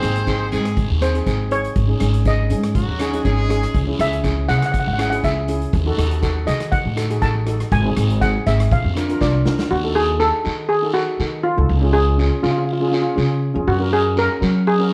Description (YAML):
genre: calypso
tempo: 121 BPM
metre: 4/4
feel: straight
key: unclear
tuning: A4 = 441 Hz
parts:
  - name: brilliant horn section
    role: second line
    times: 0.0-3.8 s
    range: F#3 to B#4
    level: -29 LUFS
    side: equal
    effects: none
  - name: steel pan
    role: accompaniment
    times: 0.0-14.9 s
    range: B#3 to A#4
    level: -26 LUFS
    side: equal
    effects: none
  - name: upright bass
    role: bass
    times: 0.0-14.9 s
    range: G#1 to F#3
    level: -22 LUFS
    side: equal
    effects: none
  - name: street-band drum kit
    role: drums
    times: 0.0-9.7 s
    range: hi-hat, kick drum, rim click, snare drum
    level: -27 LUFS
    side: equal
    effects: none
  - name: guiro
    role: percussion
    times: 0.3-14.9 s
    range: none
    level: -35 LUFS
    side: equal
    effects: none
  - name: steel pan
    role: melody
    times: 1.0-14.8 s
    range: E#4 to A5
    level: -23 LUFS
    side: equal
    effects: none
room: moderate studio reverb, RT60 0.6 s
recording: worn, warbling old tape, cassette tape, warbly pitch drift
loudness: -19 LUFS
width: mono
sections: 0.0-9.7 A section; 9.7-14.9 B section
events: steel pan solo 0.0-9.7; drum fill 9.2-9.7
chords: 0.0 G#; 1.8 G#sus4; 3.7 C#m; 5.7 D#dim; 7.7 G#; 8.7 A#; 9.7 D#dim; 11.7 C#; 13.7 F#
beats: 0.28 0.77 1.27 | 1.76 2.26 2.75 3.25 | 3.75 4.24 4.74 5.23 | 5.73 6.23 6.72 7.22 | 7.72 8.21 8.71 9.21 | 9.70 10.20 10.70 11.20 | 11.69 12.19 12.69 13.18 | 13.68 14.18 14.67